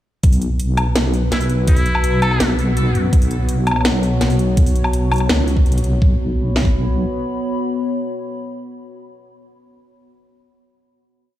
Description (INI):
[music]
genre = half-time drum and bass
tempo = 166 BPM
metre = 4/4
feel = half-time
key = unclear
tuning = A4 = 442 Hz
[part]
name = dark analog pad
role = sustained chords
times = 0.6-9.7 s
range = B3 to B5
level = -24 LUFS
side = left 2 dB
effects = chorus, phaser, sidechain pumping
[part]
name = deep soft wobble bass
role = bass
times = 0.2-7.1 s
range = B1 to F#2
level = -17 LUFS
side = equal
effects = chorus
[part]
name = drum and bass drum kit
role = drums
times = 0.2-6.7 s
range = kick drum, snare drum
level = -13 LUFS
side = equal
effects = none
[part]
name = drum and bass drum kit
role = drums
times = 0.2-5.9 s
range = hi-hat, snare drum, woodblock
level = -21 LUFS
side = equal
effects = none
[part]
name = trumpet with metal mute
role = melody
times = 1.3-2.5 s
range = E4 to A4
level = -26 LUFS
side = equal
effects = vintage 12-bit sampler grit, digital delay
[sound]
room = digital ambience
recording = played on a big sound system in a bare room, stone room reverb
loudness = -15 LUFS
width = side -13 dB against mid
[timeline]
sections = 0.2-6.0 drop; 6.0-8.9 final chord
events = drop 0.2-6.0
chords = 0.2 B5